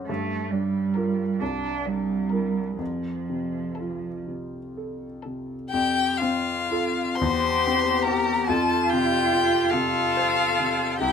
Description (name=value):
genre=classical, slow romantic movement for piano quartet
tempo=39-49 BPM (dotted quarters)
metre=6/8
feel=rubato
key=F major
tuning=A4 = 437 Hz
part: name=clear concert grand piano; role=accompaniment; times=0.0-11.1 s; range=C2 to C5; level=-28 LUFS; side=left 1 dB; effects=none
part: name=rich cello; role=second line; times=0.1-11.1 s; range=F3 to A4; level=-26 LUFS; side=right 5 dB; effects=none
part: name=warm violin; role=melody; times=0.9-11.1 s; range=A4 to C6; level=-25 LUFS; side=left 6 dB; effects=none
part: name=rich violin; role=second line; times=5.7-11.1 s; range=F4 to C5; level=-29 LUFS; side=left 5 dB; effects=none
room=moderate studio reverb, RT60 0.8 s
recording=minimal, uncompressed stereo recording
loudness=-22 LUFS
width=side -7 dB against mid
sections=0.0-5.7 A section; 5.7-11.1 A section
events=none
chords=0.1 Gm7; 1.4 C9; 2.8 F; 7.2 C/E; 8.5 F